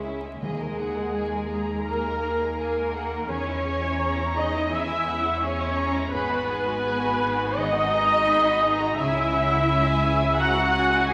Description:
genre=cinematic, emotional film score for orchestra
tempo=84 BPM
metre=4/4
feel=rubato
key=unclear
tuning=A4 = 440 Hz
part: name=muted studio violin section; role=melody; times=0.0-11.1 s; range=D#5 to B5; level=-36 LUFS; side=equal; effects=none
part: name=muted studio violin section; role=second line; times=0.0-11.1 s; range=G#3 to A#4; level=-36 LUFS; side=equal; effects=none
part: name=muted studio viola section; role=accompaniment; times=0.0-11.1 s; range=G#4 to F#5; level=-26 LUFS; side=equal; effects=none
part: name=concert harp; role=arpeggios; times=0.0-11.1 s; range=G#2 to G#4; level=-36 LUFS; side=equal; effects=none
part: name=muted studio cello section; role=bass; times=0.0-11.1 s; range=G#3 to F#4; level=-32 LUFS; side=equal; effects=none
part: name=muted studio double bass section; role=bass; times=0.0-11.1 s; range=G#1 to E2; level=-34 LUFS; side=equal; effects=none
part: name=timpani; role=percussion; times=0.4-1.5 s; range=D#3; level=-40 LUFS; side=equal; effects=none
room=wet scoring stage reverb, RT60 1.7 s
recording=recorded in a church or concert hall, vinyl crackle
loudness=-24 LUFS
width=mono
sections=0.0-11.1 A section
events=none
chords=0.4 D#sus4; 3.3 C#m/E; 6.1 G#m7; 9.0 C#m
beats=| 0.43 1.15 1.88 2.60 | 3.30 4.02 4.73 5.43 | 6.14 6.85 7.57 8.29 | 8.99 9.70 10.40 11.11

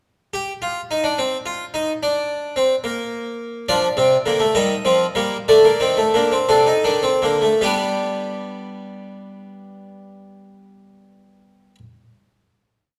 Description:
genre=classical, baroque-style 3-part fugue for harpsichord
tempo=50-73 BPM (dotted quarters)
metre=6/8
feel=straight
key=unclear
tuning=A4 = 440 Hz
part: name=harpsichord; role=solo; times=0.3-11.8 s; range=C3 to Eb5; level=-19 LUFS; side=equal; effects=none
room=moderate scoring stage reverb, RT60 1.6 s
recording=dark, warm production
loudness=-19 LUFS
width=mono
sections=0.3-7.6 exposition; 7.6-12.4 final chord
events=slowing down 2.8-7.6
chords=0.3 N.C.; 3.7 Dm; 4.6 Eb; 5.5 D5; 7.6 G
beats=| 0.33 1.18 | 2.01 2.84 | 3.68 4.55 | 5.48 6.49 | 7.61 8.80 | 9.98 11.17

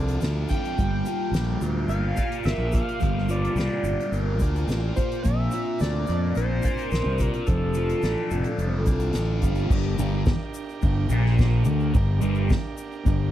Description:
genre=psychedelic rock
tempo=108 BPM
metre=4/4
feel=straight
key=G minor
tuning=A4 = 440 Hz
part: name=overdriven combo organ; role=sustained chords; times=0.0-13.3 s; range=Bb3 to Bb4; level=-37 LUFS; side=right 5 dB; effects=spring reverb
part: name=thick fuzz guitar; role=riff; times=0.0-13.3 s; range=G2 to D5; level=-27 LUFS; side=left 1 dB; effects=distortion, phaser
part: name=fuzz fingered electric bass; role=bass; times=0.0-13.3 s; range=F1 to F2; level=-25 LUFS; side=equal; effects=overdrive
part: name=soft-mallet drum kit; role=drums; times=0.1-13.2 s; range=crash cymbal, hi-hat, kick drum, ride cymbal, snare drum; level=-26 LUFS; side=equal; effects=none
part: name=egg shaker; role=percussion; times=0.1-13.2 s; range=none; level=-47 LUFS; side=left 9 dB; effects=none
part: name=overdriven synth lead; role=melody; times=0.5-9.4 s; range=A4 to G5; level=-32 LUFS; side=equal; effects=distortion, chorus, phaser, tape echo
room=small room ambience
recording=dry, close 1970s-style studio recording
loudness=-22 LUFS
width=side -12 dB against mid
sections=0.0-9.7 A section; 9.7-13.3 B section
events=none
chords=0.0 F6; 0.8 Gm7; 5.2 Bbadd9; 7.5 F6; 9.7 Gm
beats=0.22 | 0.78 1.34 1.90 2.45 | 3.01 3.57 4.13 4.69 | 5.24 5.80 6.36 6.92 | 7.48 8.04 8.59 9.15 | 9.71 10.27 10.82 11.38 | 11.94 12.50 13.05

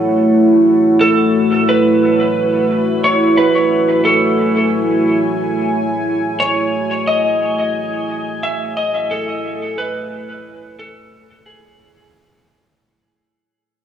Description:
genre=ambient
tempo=89 BPM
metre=4/4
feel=swing 59% on 16ths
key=F# dorian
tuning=A4 = 443 Hz
part: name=deep dark ambient pad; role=sustained chords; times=0.0-12.8 s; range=A3 to G#5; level=-15 LUFS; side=right 1 dB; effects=chorus, built-in reverb
part: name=electric slide guitar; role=melody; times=1.0-12.1 s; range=G#4 to E5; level=-17 LUFS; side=equal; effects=dub echo
room=wet echo chamber reverb, RT60 2.6 s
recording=small room reverb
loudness=-13 LUFS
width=side -9 dB against mid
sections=0.0-12.8 A section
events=fade-out 5.6-12.8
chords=0.0 F#m9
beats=0.67 1.34 | 2.02 2.69 3.36 4.04 | 4.71 5.39 6.06 6.73 | 7.41 8.08 8.76 9.43 | 10.11 10.78 11.45 12.13

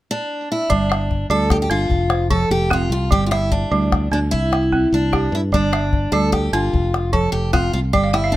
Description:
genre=west african traditional, West African string and xylophone music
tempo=100 BPM (dotted quarters)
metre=12/8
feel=straight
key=unclear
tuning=A4 = 439 Hz
part: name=picked steel-string acoustic guitar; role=melody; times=0.1-8.4 s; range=D4 to A4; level=-21 LUFS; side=equal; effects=none
part: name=balafon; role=arpeggios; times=0.7-8.4 s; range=F3 to G5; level=-22 LUFS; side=right 3 dB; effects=none
part: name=fingered electric bass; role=bass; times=0.7-8.4 s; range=F1 to G2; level=-21 LUFS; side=equal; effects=none
part: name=calabash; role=percussion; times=0.7-8.2 s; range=none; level=-21 LUFS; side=left 2 dB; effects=none
room=little or no reverb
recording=close, detailed microphones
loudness=-16 LUFS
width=side -15 dB against mid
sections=0.7-8.4 A section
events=balafon fill 8.0-8.4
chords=0.0 N.C.; 0.7 G5; 1.9 F5; 3.1 G5; 4.3 C; 5.5 G5; 6.7 F5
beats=0.10 | 0.70 1.30 1.91 2.51 | 3.11 3.71 4.31 4.92 | 5.52 6.12 6.73 7.33 | 7.94

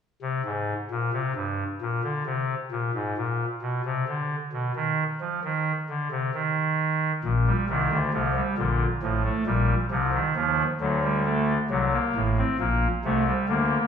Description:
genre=classical, baroque-style 4-part fugue for pipe organ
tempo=67 BPM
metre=4/4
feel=straight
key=unclear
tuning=A4 = 442 Hz
part: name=pipe organ, soft reed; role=solo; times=0.2-13.9 s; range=A1 to C4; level=-23 LUFS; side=equal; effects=none
room=wet stone room reverb, RT60 1.3 s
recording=heard from further back in the room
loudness=-23 LUFS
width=side -7 dB against mid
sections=0.0-13.9 A section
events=none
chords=0.0 N.C.; 7.2 Gm/Bb; 9.0 F/A; 10.8 D7; 12.6 Gm/Bb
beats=0.91 1.82 2.72 | 3.62 4.53 5.43 6.33 | 7.24 8.13 9.02 9.91 | 10.81 11.70 12.60 13.49

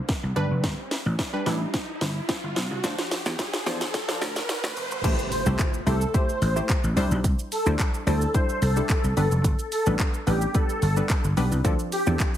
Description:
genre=dance-pop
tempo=109 BPM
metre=4/4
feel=straight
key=unclear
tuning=A4 = 440 Hz
part: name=glassy wavetable pluck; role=accompaniment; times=0.0-12.4 s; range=E3 to C5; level=-30 LUFS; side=left 1 dB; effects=chorus, sidechain pumping
part: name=riser and impact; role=sound effects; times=0.0-7.2 s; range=none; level=-33 LUFS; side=right 1 dB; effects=none
part: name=house drum kit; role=drums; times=0.1-12.4 s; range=crash cymbal, handclaps, hi-hat, kick drum, shaker, snare drum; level=-26 LUFS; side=equal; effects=none
part: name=vintage slap bass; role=bass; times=0.2-12.1 s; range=F1 to E2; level=-24 LUFS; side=equal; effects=sidechain pumping
part: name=filtered supersaw swell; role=melody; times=5.3-12.0 s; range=G4 to C5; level=-29 LUFS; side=equal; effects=sidechain pumping, ping-pong delay
room=light reverb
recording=heavily compressed radio sound, multiband compression, high-pass filter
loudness=-22 LUFS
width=side -11 dB against mid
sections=0.0-5.0 A section; 5.0-12.4 B section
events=build-up 0.0-5.0; drum fill 0.0-5.0; riser 0.0-5.0; filter sweep 0.0-5.0; drop 5.0-12.4; impact 5.0-7.2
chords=0.4 G; 2.8 Dm7; 5.0 Am7; 7.0 Cadd9; 9.2 G; 11.6 Dm7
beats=0.09 | 0.64 1.19 1.74 2.29 | 2.84 3.39 3.94 4.49 | 5.04 5.59 6.14 6.69 | 7.24 7.79 8.34 8.89 | 9.45 9.99 10.55 11.10 | 11.65 12.20

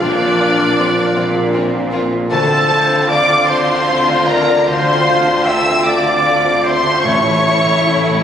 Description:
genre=cinematic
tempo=51 BPM (dotted quarters)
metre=6/8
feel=uneven beats, rubato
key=D minor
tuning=A4 = 441 Hz
part: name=clear symphonic violin section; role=melody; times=0.0-8.2 s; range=D5 to E6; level=-17 LUFS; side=left 1 dB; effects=none
part: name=mellow large flute ensemble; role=second line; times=0.0-8.0 s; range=F4 to G5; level=-20 LUFS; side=left 1 dB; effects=none
part: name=warm clarinet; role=second line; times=0.0-8.2 s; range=D4 to E5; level=-20 LUFS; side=left 1 dB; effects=none
part: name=warm studio violin section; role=second line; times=0.0-8.2 s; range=A3 to F4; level=-23 LUFS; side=left 2 dB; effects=none
part: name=felt-muted upright piano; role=accompaniment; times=0.0-8.2 s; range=A1 to C5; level=-24 LUFS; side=left 1 dB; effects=none
part: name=warm symphonic viola section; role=accompaniment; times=0.0-8.2 s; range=D4 to E5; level=-21 LUFS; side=right 1 dB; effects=none
part: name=mellow French horn section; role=sustained chords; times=0.0-8.2 s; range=A3 to F4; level=-23 LUFS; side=equal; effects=none
part: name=concert harp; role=arpeggios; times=0.0-8.2 s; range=A2 to C6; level=-24 LUFS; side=left 4 dB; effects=none
part: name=clear symphonic double bass section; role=bass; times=0.0-8.2 s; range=A1 to D2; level=-26 LUFS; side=right 4 dB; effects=none
part: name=rich symphonic cello section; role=bass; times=0.0-8.2 s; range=A2 to D3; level=-22 LUFS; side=right 2 dB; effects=none
part: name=timpani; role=percussion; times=7.0-8.2 s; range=A2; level=-31 LUFS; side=equal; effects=none
room=moderate scoring stage reverb, RT60 1.9 s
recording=recorded on a phone in the room, studio reverb, compression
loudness=-11 LUFS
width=side -8 dB against mid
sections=0.0-8.2 A section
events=timpani fill 7.1-8.2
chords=0.0 Bbadd9; 2.3 Dm7; 7.1 A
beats=| 0.01 1.16 | 2.31 3.49 | 4.68 5.87 | 7.05

